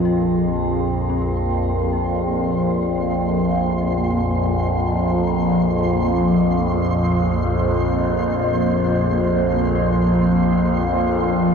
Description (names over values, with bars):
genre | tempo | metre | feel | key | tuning
dark ambient drone | free time | none | none | unclear | A4 = 443 Hz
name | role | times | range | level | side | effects
granular cloud pad | sustained chords | 0.8-11.5 s | Bb3 to C5 | -26 LUFS | equal | built-in reverb, shimmer reverb
dark detuned synth bell | arpeggios | 0.0-11.5 s | C4 to Bb4 | -33 LUFS | left 3 dB | chorus, tremolo, ping-pong delay, shimmer reverb
overtone-sweeping drone | drone | 0.0-11.5 s | Bb1 to F2 | -18 LUFS | equal | chorus, built-in reverb, phaser
flickering grainy texture | texture | 0.0-11.5 s | C6 | -32 LUFS | right 3 dB | built-in reverb, shimmer reverb
room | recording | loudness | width
wet huge ambient reverb, RT60 9.4 s | dark, warm production | -17 LUFS | side -6 dB against mid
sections
0.0-11.5 A section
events
fade-in on ambient pad 0.0-11.5; fade-in on synth texture 0.0-11.5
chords
0.0 Bb5